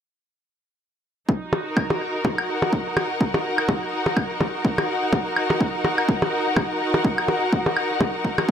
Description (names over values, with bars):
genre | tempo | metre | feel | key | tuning
minimal techno | 125 BPM | 4/4 | swing 57% on 16ths | Eb minor | A4 = 440 Hz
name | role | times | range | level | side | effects
electronic kick drum | drums | 1.3-8.5 s | none | -22 LUFS | equal | high-pass filter on kick, high-pass filter on room
rich studio string section | texture | 1.3-8.5 s | Eb4 to Gb5 | -24 LUFS | equal | sidechain pumping
percussion blips and claves | percussion | 1.5-8.5 s | none | -24 LUFS | equal | none
room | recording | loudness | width
moderate lush hall reverb, RT60 1.9 s | none | -20 LUFS | side -8 dB against mid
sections
1.3-8.5 A section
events
none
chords
1.3 Ebm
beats
| 1.29 1.77 2.25 2.73 | 3.21 3.69 4.17 4.65 | 5.13 5.61 6.09 6.57 | 7.05 7.53 8.01 8.49